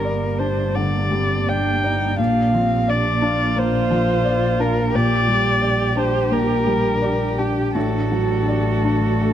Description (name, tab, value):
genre	neoclassical piano and strings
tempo	80-88 BPM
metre	4/4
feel	rubato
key	G minor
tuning	A4 = 441 Hz
part	muted violin	melody	0.0-9.3 s	G4 to G5	-22 LUFS	left 2 dB	none
part	muted cello	second line	0.0-9.3 s	Bb3 to G4	-27 LUFS	right 10 dB	none
part	felt-muted upright piano	accompaniment	0.0-9.3 s	G2 to D5	-22 LUFS	left 2 dB	none
part	granular cloud pad	sustained chords	0.7-9.3 s	Bb3 to D5	-28 LUFS	right 2 dB	built-in reverb
part	muted double bass	bass	0.0-9.3 s	G1 to Bb1	-23 LUFS	right 1 dB	none
room	light reverb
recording	close, detailed microphones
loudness	-17 LUFS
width	side -10 dB against mid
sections	0.0-9.3 A section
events	none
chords	0.0 Gm; 2.2 Bb; 4.9 Gm/Bb; 7.8 D/A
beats	0.05 0.75 1.48 | 2.18 2.88 3.56 4.25 | 4.94 5.62 6.31 7.02 | 7.75 8.49 9.22